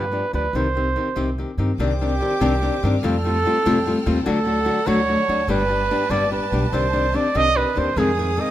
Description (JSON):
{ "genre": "mexican folk, mariachi", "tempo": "97 BPM (dotted quarters)", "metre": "6/8", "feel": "straight", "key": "C harmonic minor", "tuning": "A4 = 440 Hz", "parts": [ { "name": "mellow trumpet", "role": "melody", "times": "0.0-8.5 s", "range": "G4 to Eb5", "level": "-22 LUFS", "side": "right 4 dB", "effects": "none" }, { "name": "nylon-string guitar", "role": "accompaniment", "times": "0.0-8.5 s", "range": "F2 to Ab4", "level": "-22 LUFS", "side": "left 3 dB", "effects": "none" }, { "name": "upright bass", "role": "bass", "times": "0.0-8.4 s", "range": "G1 to G2", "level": "-24 LUFS", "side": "equal", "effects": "none" }, { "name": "warm symphonic violin section", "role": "sustained chords", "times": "1.8-8.5 s", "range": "Ab4 to F6", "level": "-33 LUFS", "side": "left 1 dB", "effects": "none" } ], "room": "moderate recital hall reverb, RT60 1.6 s", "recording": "close, detailed microphones", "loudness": "-18 LUFS", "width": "side -12 dB against mid", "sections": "0.0-1.8 A section; 1.8-8.5 A section", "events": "none", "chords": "0.0 G7; 0.5 Cm; 1.8 Cmadd9; 3.0 Fadd9; 4.3 D; 5.5 G; 6.7 Cmadd9; 8.0 Fm7", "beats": "| 0.53 1.16 | 1.79 2.41 | 3.03 3.65 | 4.26 4.88 | 5.49 6.11 | 6.73 7.35 | 7.97" }